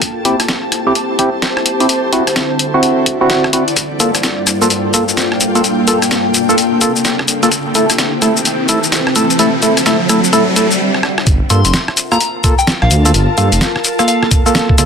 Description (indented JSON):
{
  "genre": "UK garage, two-step garage",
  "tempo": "128 BPM",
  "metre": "4/4",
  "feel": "swing 63% on 16ths",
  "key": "G dorian",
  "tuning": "A4 = 440 Hz",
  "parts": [
    { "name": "soft string machine", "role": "sustained chords", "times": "0.0-10.8 s", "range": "G2 to A4", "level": "-22 LUFS", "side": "equal", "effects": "ensemble chorus, sidechain pumping" },
    { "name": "boom bap sampler-style drum kit", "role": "drums", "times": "0.0-14.9 s", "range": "congas, hi-hat, rim click, shaker, snare drum", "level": "-15 LUFS", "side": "left 2 dB", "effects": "high-pass filter on hats, high-pass filter on snare, high-pass filter on perc" },
    { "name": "electronic kick drum", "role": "drums", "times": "0.0-14.8 s", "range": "none", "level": "-14 LUFS", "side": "equal", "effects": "high-pass filter on kick" },
    { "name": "ethereal airy pad", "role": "texture", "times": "0.0-14.9 s", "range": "Bb3 to A5", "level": "-19 LUFS", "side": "left 2 dB", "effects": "ensemble chorus, built-in reverb, sidechain pumping" },
    { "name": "percussive organ stab", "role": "stabs", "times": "0.2-14.9 s", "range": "A3 to A4", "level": "-14 LUFS", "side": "right 1 dB", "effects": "chorus, digital delay" },
    { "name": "riser", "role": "sound effects", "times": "5.7-10.8 s", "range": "none", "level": "-20 LUFS", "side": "right 1 dB", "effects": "none" },
    { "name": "dark detuned saw bass", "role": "bass", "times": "11.3-13.6 s", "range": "F1 to G2", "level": "-12 LUFS", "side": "equal", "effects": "sidechain pumping" },
    { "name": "soft synth bell", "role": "melody", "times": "11.5-14.2 s", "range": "F5 to C6", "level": "-19 LUFS", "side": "left 2 dB", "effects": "chorus, phaser, digital delay" }
  ],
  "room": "wet small room reverb, RT60 0.5 s",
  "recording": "dense, heavily limited modern master",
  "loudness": "-11 LUFS",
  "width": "side -6 dB against mid",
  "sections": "0.0-11.3 A section; 11.3-14.9 B section",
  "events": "build-up 0.0-11.3; filter sweep on string machine 0.0-11.3; riser 5.7-10.8; stop 10.8-11.3; drum fill 10.9-11.3; drop 11.3-14.9",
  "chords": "0.0 Am7; 1.9 D9; 3.8 Gm9; 7.5 Am7; 9.4 D9; 11.3 Gm9"
}